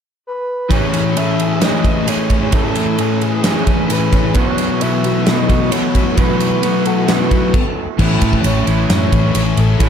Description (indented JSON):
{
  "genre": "rock, shoegaze and dream pop",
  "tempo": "132 BPM",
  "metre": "4/4",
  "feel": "straight",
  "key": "A major",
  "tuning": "A4 = 440 Hz",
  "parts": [
    { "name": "breathy flute-like synth lead", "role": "melody", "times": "0.3-9.9 s", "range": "G#4 to E5", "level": "-23 LUFS", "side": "right 1 dB", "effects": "chorus, tremolo, analog delay" },
    { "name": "fingerpicked twelve-string acoustic guitar", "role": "arpeggios", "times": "0.7-9.9 s", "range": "E3 to G#4", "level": "-27 LUFS", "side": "left 4 dB", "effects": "wide subtle chorus, analog delay" },
    { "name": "electric guitar through a small old amp", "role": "riff", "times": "0.7-9.9 s", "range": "A2 to G#4", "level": "-20 LUFS", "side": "right 12 dB", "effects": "reverse reverb" },
    { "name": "thick fuzz guitar", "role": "riff", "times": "0.7-9.9 s", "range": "A2 to B3", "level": "-18 LUFS", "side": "left 8 dB", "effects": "distortion, ensemble chorus" },
    { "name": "gated 80s drum kit", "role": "drums", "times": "0.7-9.9 s", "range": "crash cymbal, kick drum, ride cymbal, snare drum", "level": "-18 LUFS", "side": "right 1 dB", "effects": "none" },
    { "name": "string machine, cellos", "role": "sustained chords", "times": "4.4-9.9 s", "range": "E3 to G#5", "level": "-27 LUFS", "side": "equal", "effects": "none" },
    { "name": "vintage muted fingered electric bass", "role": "bass", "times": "8.0-9.9 s", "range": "A1 to F#2", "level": "-16 LUFS", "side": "right 1 dB", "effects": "none" }
  ],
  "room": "light reverb",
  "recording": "dark, warm production",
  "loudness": "-13 LUFS",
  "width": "side -8 dB against mid",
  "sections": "0.7-8.0 A section; 8.0-9.9 B section",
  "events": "stop 7.5-8.0",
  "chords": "0.0 N.C.; 0.7 Amaj7; 4.4 B7sus4; 8.0 Amaj7"
}